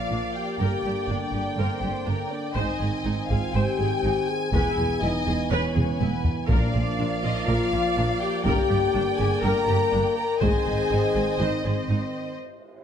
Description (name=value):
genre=cinematic, epic orchestral film score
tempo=122 BPM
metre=4/4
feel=straight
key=unclear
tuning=A4 = 437 Hz
part: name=warm symphonic violin section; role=melody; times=0.0-12.3 s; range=Eb5 to Ab5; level=-33 LUFS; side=left 3 dB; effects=none
part: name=warm symphonic violin section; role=second line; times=0.0-12.4 s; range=Bb4 to Bb5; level=-32 LUFS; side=left 2 dB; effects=none
part: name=clear symphonic viola section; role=accompaniment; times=0.0-12.0 s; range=D4 to D5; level=-32 LUFS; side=right 2 dB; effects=none
part: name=clear trombone section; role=sustained chords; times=0.0-12.3 s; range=D3 to C4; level=-32 LUFS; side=right 6 dB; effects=none
part: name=dark French horn section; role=sustained chords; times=0.0-12.4 s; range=Bb3 to Bb4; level=-28 LUFS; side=left 6 dB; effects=none
part: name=rich symphonic double bass section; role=bass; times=0.1-12.0 s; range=E1 to Bb1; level=-29 LUFS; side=right 2 dB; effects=none
part: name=warm symphonic cello section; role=bass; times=0.1-12.0 s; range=E2 to Bb2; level=-30 LUFS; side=right 2 dB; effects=none
part: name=taiko ensemble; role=drums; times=2.6-10.9 s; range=none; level=-27 LUFS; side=equal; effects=none
part: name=timpani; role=percussion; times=6.5-7.2 s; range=Bb2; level=-30 LUFS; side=left 2 dB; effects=none
part: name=cymbal swell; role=sound effects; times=12.5-12.8 s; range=none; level=-47 LUFS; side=right 3 dB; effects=none
room=light reverb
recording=close, detailed microphones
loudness=-22 LUFS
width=side -8 dB against mid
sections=0.0-12.8 A section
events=drum fill 5.8-6.5; break 12.4-12.8; cymbal swell 12.5-12.8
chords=0.0 Bb; 0.6 Gm; 2.6 Ab; 4.5 E; 6.5 Bb; 8.5 Gm; 10.4 Ab